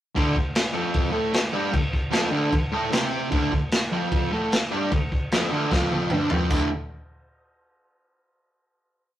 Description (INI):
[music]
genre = garage rock duo or trio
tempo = 151 BPM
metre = 4/4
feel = straight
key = unclear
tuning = A4 = 440 Hz
[part]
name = fuzz guitar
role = riff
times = 0.1-6.7 s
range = D2 to C4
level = -24 LUFS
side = equal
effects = distortion
[part]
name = crunchy breakbeat drum kit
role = drums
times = 0.2-6.6 s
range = crash cymbal, kick drum, snare drum, splash cymbal, toms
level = -24 LUFS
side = equal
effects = none
[sound]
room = moderate studio reverb, RT60 0.7 s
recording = rough rehearsal-room recording, tube saturation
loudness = -21 LUFS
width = side -12 dB against mid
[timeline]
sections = 0.2-6.5 riff; 6.5-8.1 final chord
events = drum fill 5.7-6.5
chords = 0.2 D5